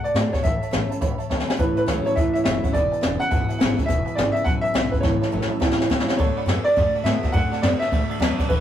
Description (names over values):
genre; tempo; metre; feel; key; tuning
rockabilly; 209 BPM; 4/4; swing 63% on 8ths; unclear; A4 = 440 Hz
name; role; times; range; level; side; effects
clear upright piano; melody; 0.0-8.6 s; B4 to F#5; -24 LUFS; equal; none
picked steel-string acoustic guitar; accompaniment; 0.0-8.6 s; E2 to F#4; -32 LUFS; left 3 dB; none
tack piano; accompaniment; 0.0-8.6 s; B4 to B5; -33 LUFS; right 5 dB; none
upright bass; bass; 0.0-8.6 s; E1 to B2; -27 LUFS; equal; none
jazz brush drum kit; drums; 0.0-8.6 s; hi-hat, kick drum, ride cymbal, snare drum; -23 LUFS; left 1 dB; none
electric guitar through a small old amp; riff; 1.6-8.6 s; E2 to B3; -27 LUFS; right 3 dB; none
room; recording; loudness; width
moderate studio ambience, RT60 0.5 s; rough rehearsal-room recording; -19 LUFS; side -10 dB against mid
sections
0.0-6.2 A section; 6.2-8.6 B section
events
drum fill 1.3, 5.0-6.2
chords
0.4 A; 2.7 E7; 5.0 A; 6.2 D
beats
0.15 | 0.44 0.72 1.01 1.30 | 1.59 1.88 2.16 2.45 | 2.74 3.03 3.31 3.60 | 3.89 4.18 4.46 4.75 | 5.04 5.33 5.61 5.90 | 6.19 6.48 6.76 7.05 | 7.34 7.63 7.92 8.20 | 8.49